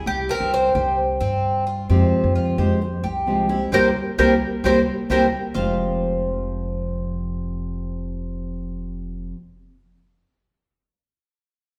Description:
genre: latin.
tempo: 131 BPM.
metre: 4/4.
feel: straight.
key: F harmonic minor.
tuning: A4 = 440 Hz.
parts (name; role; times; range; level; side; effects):
Cuban tres; melody; 0.0-1.0, 3.7-5.3 s; G4 to C5; -23 LUFS; equal; none.
Cuban tres; arpeggios; 0.0-9.3 s; C4 to F5; -28 LUFS; equal; none.
upright bass; bass; 0.0-9.3 s; F1 to G2; -28 LUFS; equal; none.
nylon-string guitar; accompaniment; 1.9-9.4 s; F2 to G4; -26 LUFS; equal; none.
room: wet large studio reverb, RT60 1.3 s.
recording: band playing live in one room.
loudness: -21 LUFS.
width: mono.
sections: 0.0-5.6 A section; 5.6-9.2 B section.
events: band accent 3.7-5.6.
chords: 0.0 C; 1.9 Fmadd9; 3.7 C7; 5.6 Fmadd9.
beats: | 0.06 0.52 0.98 1.44 | 1.90 2.35 2.81 3.27 | 3.73 4.18 4.64 5.10 | 5.56 6.01 6.47 6.93 | 7.38 7.84 8.30 8.76.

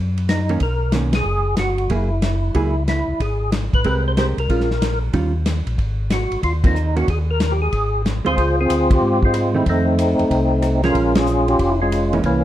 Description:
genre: soul jazz organ trio.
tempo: 186 BPM.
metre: 4/4.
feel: swing 64% on 8ths.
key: Db major from 8.4 s.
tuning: A4 = 439 Hz.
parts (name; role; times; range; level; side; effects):
mellow tonewheel organ; bass; 0.0-12.4 s; F1 to Ab2; -21 LUFS; equal; chorus vibrato, slow rotary speaker.
warm soul drum kit; drums; 0.2-12.3 s; hi-hat, kick drum, ride cymbal, rim click, snare drum; -23 LUFS; equal; none.
percussive tonewheel organ; melody; 0.3-12.4 s; E3 to C5; -20 LUFS; equal; chorus vibrato, slow rotary speaker.
hollow-body jazz guitar; accompaniment; 0.5-12.4 s; Eb3 to Bb4; -23 LUFS; right 4 dB; none.
room: light reverb.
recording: dark, warm production.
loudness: -16 LUFS.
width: side -12 dB against mid.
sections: 0.0-8.4 A section; 8.4-12.4 B section.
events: band accent 1.1, 6.6, 8.9, 11.1.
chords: 0.0 Gb6; 0.6 Bmaj9; 1.9 Gb9; 3.2 Abmaj9; 4.5 Bbm7; 5.1 Eb9; 5.8 Absus2; 7.1 Ebadd11; 7.7 Ab6; 8.4 Dbmaj7; 9.7 F7; 11.0 Bbm7.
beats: 0.29 | 0.61 0.93 1.26 1.58 | 1.90 2.23 2.55 2.87 | 3.20 3.52 3.84 4.17 | 4.49 4.81 5.14 5.46 | 5.78 6.11 6.43 6.75 | 7.08 7.40 7.72 8.04 | 8.37 8.69 9.01 9.34 | 9.66 9.98 10.31 10.63 | 10.95 11.28 11.60 11.92 | 12.24.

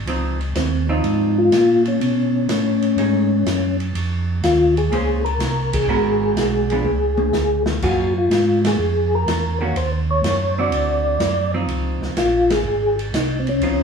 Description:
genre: soul jazz organ trio.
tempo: 124 BPM.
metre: 4/4.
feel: swing 69% on 8ths.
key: Db major.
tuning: A4 = 440 Hz.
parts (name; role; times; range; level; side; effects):
mellow tonewheel organ; bass; 0.0-13.8 s; Ab1 to Cb3; -22 LUFS; right 1 dB; chorus vibrato, slow rotary speaker.
vintage hollow-body jazz guitar; accompaniment; 0.1-13.8 s; D3 to C5; -24 LUFS; right 3 dB; none.
open jazz drum kit; drums; 0.1-13.8 s; crash cymbal, hi-hat, kick drum, ride cymbal, snare drum, toms; -26 LUFS; equal; none.
percussive tonewheel organ; melody; 0.6-13.8 s; C4 to D5; -19 LUFS; left 2 dB; slow rotary speaker, chorus vibrato.
room: wet studio reverb, RT60 0.8 s.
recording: heard from further back in the room, small room ambience.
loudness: -16 LUFS.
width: side -6 dB against mid.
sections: 0.1-13.8 A section.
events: band accent 5.6, 8.5, 12.4; drum fill 6.8-7.8.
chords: 0.1 Dbmaj9; 2.0 Cb13; 3.9 Bbm9; 5.9 Abm9; 6.8 Db5; 7.8 Gbmaj9; 9.8 Ebm7; 10.7 D9; 11.7 Dbmaj9.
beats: | 0.07 0.56 1.04 1.52 | 2.01 2.49 2.98 3.46 | 3.94 4.43 4.91 5.40 | 5.88 6.36 6.85 7.33 | 7.82 8.30 8.78 9.27 | 9.75 10.23 10.72 11.20 | 11.69 12.17 12.65 13.14 | 13.62.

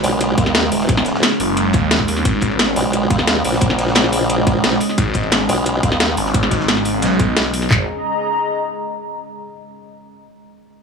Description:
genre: dark technical drum and bass.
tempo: 176 BPM.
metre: 4/4.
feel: straight.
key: G# minor.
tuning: A4 = 440 Hz.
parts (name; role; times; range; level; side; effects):
deep dark ambient pad; sustained chords; 0.0-7.9 s; G#3 to D#5; -22 LUFS; right 1 dB; chorus, built-in reverb, sidechain pumping.
formant-sweep wobble bass; bass; 0.0-6.2 s; D#1 to D#2; -18 LUFS; equal; chorus.
phased detuned saw bass; bass; 0.0-2.8, 5.0-7.9 s; F#1 to D#2; -19 LUFS; equal; phaser.
crunchy breakbeat drum kit; drums; 0.0-7.6 s; ride cymbal, snare drum; -29 LUFS; equal; none.
drum and bass drum kit; drums; 0.0-7.7 s; hi-hat, snare drum; -18 LUFS; equal; none.
drum and bass drum kit; drums; 0.4-7.8 s; handclaps, kick drum, toms; -17 LUFS; equal; none.
airy breathy pad; texture; 7.7-9.0 s; G#4 to A#5; -22 LUFS; left 2 dB; chorus, sidechain pumping.
room: light reverb.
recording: studio ambience.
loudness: -14 LUFS.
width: side -5 dB against mid.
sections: 0.0-7.7 A section; 7.7-9.1 B section.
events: drop 0.0-7.7.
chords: 0.0 G#m; 7.7 G#5.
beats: 0.21 0.55 | 0.89 1.23 1.57 1.91 | 2.25 2.59 2.93 3.27 | 3.62 3.96 4.30 4.64 | 4.98 5.32 5.66 6.00 | 6.34 6.68 7.03 7.37 | 7.71 8.05 8.39 8.73.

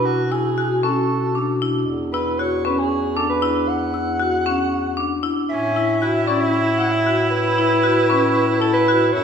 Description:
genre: contemporary instrumental, chamber music in an uneven meter.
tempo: 231 BPM (eighths).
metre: 7/8.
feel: straight.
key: A major.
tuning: A4 = 440 Hz.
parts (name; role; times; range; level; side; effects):
dark soprano saxophone; melody; 0.0-9.2 s; F#4 to F#5; -22 LUFS; right 2 dB; none.
warm bass clarinet; bass; 0.0-9.2 s; E2 to B2; -24 LUFS; left 1 dB; none.
marimba with hard mallets; arpeggios; 0.3-9.1 s; C#4 to F#4; -21 LUFS; left 2 dB; none.
rich viola; second line; 5.5-9.2 s; C#4 to E4; -22 LUFS; right 2 dB; none.
room: wet recital hall reverb, RT60 1.8 s.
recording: recorded in a church or concert hall.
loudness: -17 LUFS.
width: side -7 dB against mid.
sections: 0.0-9.2 A section.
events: none.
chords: 0.0 B7sus2; 1.9 Esus2; 5.5 A.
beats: | 0.05 0.31 0.57 0.83 1.09 1.35 1.61 | 1.87 2.13 2.39 2.65 2.90 3.16 3.42 | 3.68 3.94 4.20 4.46 4.72 4.98 5.24 | 5.50 5.76 6.02 6.28 6.54 6.80 7.06 | 7.32 7.58 7.84 8.10 8.36 8.62 8.88 | 9.14.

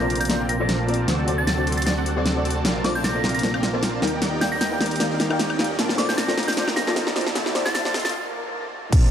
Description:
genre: future bass.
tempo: 153 BPM.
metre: 4/4.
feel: swing 54% on 16ths, half-time.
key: Bb major.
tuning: A4 = 443 Hz.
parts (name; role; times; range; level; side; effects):
glassy synth bell; melody; 0.0-8.1 s; D6 to Bb6; -29 LUFS; equal; chorus, sidechain pumping, digital delay.
soft round pluck; accompaniment; 0.0-7.9 s; Bb3 to G5; -29 LUFS; left 2 dB; lush chorus, sidechain pumping, digital delay.
airy breathy pad; sustained chords; 0.0-8.9 s; C3 to G4; -34 LUFS; right 1 dB; none.
dense compressed supersaw; riff; 0.0-9.1 s; C4 to C6; -27 LUFS; equal; sidechain pumping, low-pass filter, digital delay.
fat analog bass; bass; 0.0-9.1 s; Bb1 to Eb2; -29 LUFS; equal; sidechain pumping.
riser and swell; sound effects; 1.9-8.9 s; none; -34 LUFS; right 1 dB; none.
big-room dance drum kit; drums; 0.1-9.0 s; crash cymbal, hi-hat, snare drum, woodblock; -25 LUFS; equal; none.
electronic kick drum; drums; 8.9-9.0 s; none; -14 LUFS; equal; none.
room: moderate huge ambient reverb, RT60 9.2 s.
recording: high-pass filter.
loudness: -20 LUFS.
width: side -9 dB against mid.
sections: 0.0-8.9 A section.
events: build-up 0.0-8.9; drum fill 0.0-8.1; filter sweep on supersaw synth 0.0-8.9; filter sweep 0.0-8.9; break 8.1-8.9; swell 8.1-8.9.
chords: 0.0 Bbmaj9; 1.1 D7; 2.7 Bbmaj9; 4.0 Ebmaj7; 5.8 Bbmaj9; 7.4 D7; 8.1 F7.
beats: 0.30 0.69 | 1.08 1.47 1.87 2.26 | 2.65 3.04 3.44 3.83 | 4.22 4.61 5.00 5.40 | 5.79 6.18 6.57 6.96 | 7.36 7.75 8.14 8.53 | 8.93.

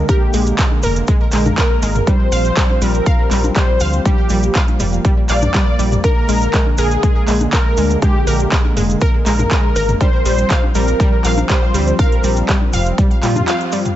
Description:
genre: progressive house.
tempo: 121 BPM.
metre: 4/4.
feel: straight.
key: unclear.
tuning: A4 = 439 Hz.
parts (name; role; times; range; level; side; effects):
wide unison lead; melody; 0.0-13.9 s; F4 to D5; -21 LUFS; equal; ensemble chorus, sidechain pumping, digital delay.
warm analog pad; sustained chords; 0.0-13.9 s; D3 to C4; -23 LUFS; right 1 dB; chorus, tremolo, sidechain pumping.
round analog bass; bass; 0.0-13.4 s; F1 to Bb2; -18 LUFS; equal; sidechain pumping.
wide unison pluck; arpeggios; 0.1-13.8 s; G3 to F5; -21 LUFS; equal; cassette tape, sidechain pumping, digital delay.
big-room dance drum kit; drums; 0.1-13.9 s; handclaps, hi-hat; -23 LUFS; right 1 dB; sidechain pumping on hats, sidechain pumping on cymbals.
electronic kick drum; drums; 0.1-13.1 s; none; -15 LUFS; equal; none.
cabasa; percussion; 0.1-13.9 s; none; -32 LUFS; right 1 dB; none.
electronic congas and toms; percussion; 0.1-13.9 s; none; -23 LUFS; left 2 dB; sidechain pumping on perc, sidechain pumping on toms.
room: digital ambience.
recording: nothing above 7.9 kHz.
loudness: -12 LUFS.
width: side -12 dB against mid.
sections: 0.0-14.0 A section.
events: break 13.5-14.0; band accent 13.5.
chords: 0.0 Bb7; 2.1 Fsus2/Bb; 6.0 Bb7; 10.0 Fsus2/Bb.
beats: | 0.09 0.58 1.08 1.58 | 2.07 2.57 3.06 3.56 | 4.06 4.55 5.05 5.54 | 6.04 6.54 7.03 7.53 | 8.02 8.52 9.02 9.51 | 10.01 10.50 11.00 11.49 | 11.99 12.49 12.98 13.48.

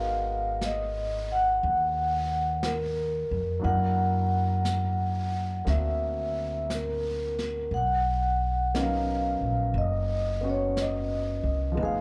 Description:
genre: jazz ballad.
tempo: 59 BPM.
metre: 4/4.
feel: swing 66% on 8ths.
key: unclear.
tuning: A4 = 440 Hz.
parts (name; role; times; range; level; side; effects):
vibraphone with soft mallets; melody; 0.0-12.0 s; Bb4 to Gb5; -30 LUFS; equal; none.
warm concert grand piano; accompaniment; 0.0-12.0 s; F3 to Bb4; -38 LUFS; equal; slapback echo.
upright bass; bass; 0.0-12.0 s; F1 to Gb2; -32 LUFS; equal; none.
jazz brush drum kit; drums; 0.6-12.0 s; brushed snare drum, hi-hat, snare drum; -43 LUFS; equal; slapback echo.
room: light reverb.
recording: live gig heard through the venue's PA, club reverb.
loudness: -28 LUFS.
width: mono.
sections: 0.0-12.0 A section.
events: none.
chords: 0.0 Abm9; 3.6 Gbaug7; 7.7 Bmaj7.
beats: 0.61 1.62 2.62 | 3.63 4.64 5.66 6.69 | 7.72 8.74 9.76 10.77 | 11.78.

